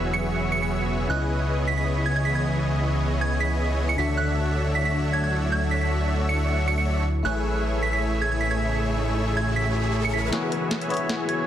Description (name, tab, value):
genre	future bass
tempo	156 BPM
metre	4/4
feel	half-time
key	E mixolydian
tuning	A4 = 440 Hz
part	bell-like tine electric piano	accompaniment	0.0-11.5 s	C#3 to E5	-31 LUFS	left 3 dB	phaser
part	ethereal airy pad	sustained chords	0.0-11.5 s	C#3 to D#5	-33 LUFS	right 1 dB	ensemble chorus, built-in reverb
part	dense compressed supersaw	riff	0.0-11.5 s	A3 to E5	-28 LUFS	equal	low-pass filter
part	fat analog bass	bass	0.0-11.5 s	E1 to D2	-26 LUFS	equal	high-pass filter
part	soft synth bell	melody	0.1-11.4 s	F#6 to C#7	-29 LUFS	right 4 dB	chorus, low-pass filter, dub echo
part	riser	sound effects	8.5-11.5 s	none	-35 LUFS	left 2 dB	none
part	trap drum kit	drums	10.3-11.4 s	hi-hat, snare drum	-30 LUFS	equal	low-pass filter on snare, studio reverb, low-pass filter on hats
room	light reverb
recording	dense, heavily limited modern master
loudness	-22 LUFS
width	side -10 dB against mid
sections	0.0-10.3 A section; 10.3-11.5 B section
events	riser 8.5-10.3, 10.3-11.5; build-up 10.3-11.5; drum fill 10.3-11.5; filter sweep on synth bell 10.3-11.5; filter sweep 10.3-11.5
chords	0.0 E69; 1.1 C#m9; 4.0 Dmaj9; 7.3 Amaj7; 10.3 E69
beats	0.33 0.71 | 1.10 1.48 1.87 2.25 | 2.63 3.02 3.40 3.79 | 4.17 4.56 4.94 5.33 | 5.71 6.10 6.48 6.87 | 7.25 7.63 8.02 8.40 | 8.79 9.17 9.56 9.94 | 10.33 10.71 11.10